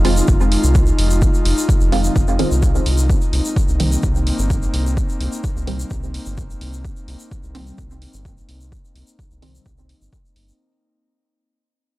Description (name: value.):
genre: dub techno.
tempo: 128 BPM.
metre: 4/4.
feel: straight.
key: unclear.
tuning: A4 = 440 Hz.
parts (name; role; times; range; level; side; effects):
airy breathy pad; sustained chords; 0.0-10.6 s; Ab3 to F4; -25 LUFS; left 1 dB; chorus, sidechain pumping.
filtered dub chord stab; stabs; 0.0-9.7 s; Bb2 to F4; -24 LUFS; right 2 dB; phaser, sidechain pumping, dub echo.
round analog bass; bass; 0.0-10.5 s; F1 to C2; -19 LUFS; equal; sidechain pumping.
electronic hi-hat; drums; 0.0-10.5 s; none; -28 LUFS; equal; overdrive, small room reverb.
tube shaker; percussion; 0.2-10.6 s; none; -30 LUFS; left 2 dB; none.
electronic kick drum; drums; 0.3-10.2 s; none; -18 LUFS; equal; small room reverb.
room: little or no reverb.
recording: dry, gritty hardware recording.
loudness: -15 LUFS.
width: side -18 dB against mid.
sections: 0.0-10.6 A section.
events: fade-out 0.0-10.6; filter sweep on synth stab 0.0-10.6.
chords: 0.0 Fm7; 3.1 Cm7.